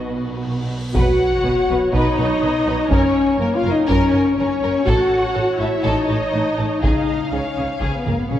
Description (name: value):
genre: cinematic, epic orchestral film score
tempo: 122 BPM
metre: 4/4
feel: straight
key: unclear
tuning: A4 = 440 Hz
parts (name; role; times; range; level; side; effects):
- warm symphonic violin section; melody; 0.0-8.4 s; Bb4 to Gb5; -28 LUFS; left 3 dB; none
- rich symphonic violin section; second line; 0.0-8.4 s; F#4 to F5; -25 LUFS; left 1 dB; none
- warm symphonic viola section; accompaniment; 0.0-8.4 s; Bb3 to Gb4; -26 LUFS; right 3 dB; none
- mellow French horn section; sustained chords; 0.0-8.4 s; Bb3 to Gb4; -20 LUFS; left 2 dB; none
- dark symphonic cello section; bass; 0.0-8.4 s; Gb2 to Db3; -27 LUFS; right 2 dB; none
- warm symphonic double bass section; bass; 0.0-8.4 s; Gb1 to Db2; -26 LUFS; right 2 dB; none
- cymbal swell and sub drop; sound effects; 0.2-2.9 s; none; -32 LUFS; equal; none
- taiko ensemble; drums; 0.9-8.4 s; none; -24 LUFS; equal; none
- timpani; percussion; 6.8-7.5 s; Db3; -30 LUFS; left 1 dB; none
room: wet concert hall reverb, RT60 2.2 s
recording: worn, warbling old tape, cassette tape, warbly pitch drift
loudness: -16 LUFS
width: side -11 dB against mid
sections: 0.9-8.4 A section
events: cymbal swell 0.2-0.9; impact 0.9-2.9; drum fill 8.1-8.4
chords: 0.0 B; 0.9 Cbadd9; 2.9 Gb; 4.9 A; 6.8 Db